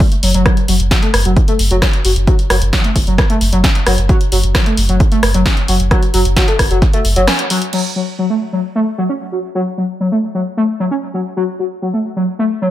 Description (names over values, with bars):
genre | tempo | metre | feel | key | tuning
driving peak-time techno | 132 BPM | 4/4 | straight | F# minor | A4 = 440 Hz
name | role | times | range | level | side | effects
overdriven synth lead | riff | 0.0-12.7 s | F#3 to C#4 | -17 LUFS | left 1 dB | distortion, lush chorus, sidechain pumping, tape echo
electronic kick drum | drums | 0.0-6.9 s | none | -13 LUFS | equal | none
punchy analog drum machine | drums | 0.0-7.8 s | crash cymbal, hi-hat, rim click, snare drum | -18 LUFS | equal | sidechain pumping on hats, sidechain pumping on cymbals
saturated sub bass | bass | 0.2-7.3 s | F#1 | -15 LUFS | equal | tube saturation, sidechain pumping, low-pass filter
room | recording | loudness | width
digital ambience | none | -12 LUFS | side -13 dB against mid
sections
0.0-7.7 A section; 7.7-12.7 B section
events
filter sweep on analog synth lead 0.0-7.7; break 7.3-7.7; band accent 7.3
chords
none